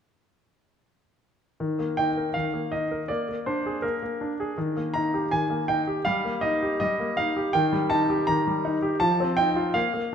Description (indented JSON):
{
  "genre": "classical-period piano sonatina",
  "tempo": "81 BPM",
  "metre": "2/4",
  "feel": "straight",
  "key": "Eb major",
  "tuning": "A4 = 441 Hz",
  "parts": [
    { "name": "bright grand piano", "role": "solo", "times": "1.6-10.1 s", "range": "Eb3 to Bb5", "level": "-23 LUFS", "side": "equal", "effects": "none" }
  ],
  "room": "wet recital hall reverb, RT60 1.7 s",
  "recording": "dark, warm production",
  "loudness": "-23 LUFS",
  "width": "side -8 dB against mid",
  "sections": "1.6-10.1 A section",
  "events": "none",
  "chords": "1.6 Eb5; 3.1 Bb7; 4.6 Eb; 6.1 Eb/G; 7.5 Eb; 9.0 F7",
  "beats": "| 1.59 2.35 | 3.09 3.83 | 4.58 5.32 | 6.06 6.80 | 7.54 8.28 | 9.02 9.76"
}